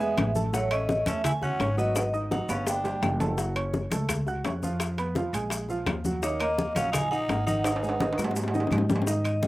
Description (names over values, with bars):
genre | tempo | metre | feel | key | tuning
Afro-Cuban jazz | 169 BPM | 4/4 | straight | unclear | A4 = 440 Hz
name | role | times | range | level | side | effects
vibraphone with medium hard mallets | melody | 0.0-3.2, 6.2-9.5 s | C#5 to Ab5 | -30 LUFS | right 1 dB | none
growling tenor saxophone | second line | 0.0-3.2, 6.2-8.7 s | A3 to E4 | -34 LUFS | left 2 dB | none
warm baby grand piano | accompaniment | 0.0-9.5 s | Eb3 to F#6 | -32 LUFS | right 2 dB | slapback echo
upright bass | bass | 0.0-9.5 s | Gb1 to Ab2 | -31 LUFS | equal | none
bongos | percussion | 0.0-9.5 s | none | -34 LUFS | left 4 dB | none
congas | percussion | 0.0-9.5 s | none | -32 LUFS | left 1 dB | none
maracas | percussion | 0.0-9.5 s | none | -41 LUFS | left 2 dB | none
claves | percussion | 0.2-9.4 s | none | -38 LUFS | left 3 dB | none
timbales | percussion | 0.2-9.4 s | none | -34 LUFS | right 2 dB | none
room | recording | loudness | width
little or no reverb | recorded outdoors, with no room sound | -25 LUFS | side -17 dB against mid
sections
0.0-9.1 A section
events
drum fill 2.0-3.4, 7.7-9.1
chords
0.0 E; 0.5 A6; 2.0 Abm7; 2.7 Gadd9; 3.4 Gbm; 4.8 Fdim; 5.5 Bb5; 6.2 Ebm; 7.7 Ab5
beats
0.18 | 0.53 0.89 1.25 1.60 | 1.96 2.31 2.67 3.03 | 3.38 3.74 4.09 4.45 | 4.80 5.16 5.52 5.87 | 6.23 6.58 6.94 7.30 | 7.65 8.01 8.36 8.72 | 9.08 9.43